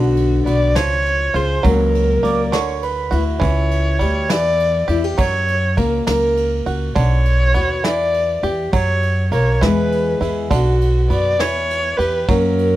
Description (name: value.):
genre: acoustic folk duo or small band.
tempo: 68 BPM (dotted quarters).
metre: 6/8.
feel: straight.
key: B harmonic minor.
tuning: A4 = 441 Hz.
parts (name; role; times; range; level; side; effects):
dark viola; melody; 0.0-12.8 s; F#4 to D5; -19 LUFS; equal; none.
fingerpicked steel-string acoustic guitar; accompaniment; 0.0-12.8 s; D2 to A#4; -22 LUFS; left 3 dB; none.
bluegrass banjo; arpeggios; 0.0-12.8 s; D3 to G4; -26 LUFS; right 5 dB; none.
upright bass; bass; 0.0-12.8 s; B1 to F#2; -19 LUFS; equal; none.
soft brush drum kit; drums; 0.2-12.7 s; kick drum, ride cymbal, snare drum; -26 LUFS; equal; none.
mellow accordion; second line; 2.2-3.2 s; B4 to D5; -23 LUFS; right 6 dB; none.
room: studio ambience.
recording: dry, close 1970s-style studio recording.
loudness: -15 LUFS.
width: side -14 dB against mid.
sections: 0.0-12.8 A section.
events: none.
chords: 0.0 Bm; 0.8 C#; 1.6 F#/C#; 2.5 Bm/D; 3.4 C#dim; 4.3 Em; 5.2 F#; 7.0 Bm; 7.8 Em; 8.7 F#; 9.6 E; 10.5 Bm; 11.4 Em.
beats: 0.76 | 1.65 2.53 | 3.41 4.30 | 5.18 6.07 | 6.96 7.84 | 8.73 9.62 | 10.50 11.39 | 12.28.